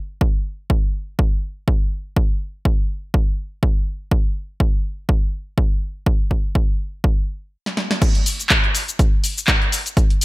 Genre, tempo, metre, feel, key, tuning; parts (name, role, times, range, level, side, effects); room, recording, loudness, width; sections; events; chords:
house; 123 BPM; 4/4; swing 55% on 16ths
electronic kick drum; drums; 0.2-10.1 s; -17 LUFS; equal
punchy analog drum machine; drums; 7.7-10.2 s; crash cymbal, handclaps, hi-hat, shaker, snare drum; -19 LUFS; equal; sidechain pumping on hats, sidechain pumping on cymbals, sidechain pumping on perc, gated reverb
little or no reverb; bright 1980s-style digital production; -18 LUFS; side -20 dB against mid
0.0-8.0 A section; 8.0-10.2 B section
filter sweep 0.0-8.0; stop 7.5-8.0; drum fill 7.7-8.0; drop 8.0-10.2